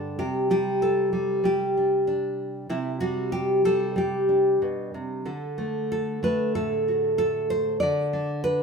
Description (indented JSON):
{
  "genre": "folk, solo fingerstyle acoustic guitar",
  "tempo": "95 BPM",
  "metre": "4/4",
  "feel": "rubato",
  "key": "unclear",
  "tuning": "A4 = 440 Hz",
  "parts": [
    { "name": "nylon-string guitar", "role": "solo", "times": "0.0-8.6 s", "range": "G2 to D5", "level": "-23 LUFS", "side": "equal", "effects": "none" }
  ],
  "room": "wet stone room reverb, RT60 1.0 s",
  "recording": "band playing live in one room",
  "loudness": "-22 LUFS",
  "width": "side -5 dB against mid",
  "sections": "0.0-8.6 A section",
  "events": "none",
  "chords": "0.2 Csus2; 5.3 D",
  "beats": "| 0.19 0.82 1.45 2.07 | 2.70 3.33 3.98 4.62 | 5.26 5.90 6.54 7.18 | 7.81 8.44"
}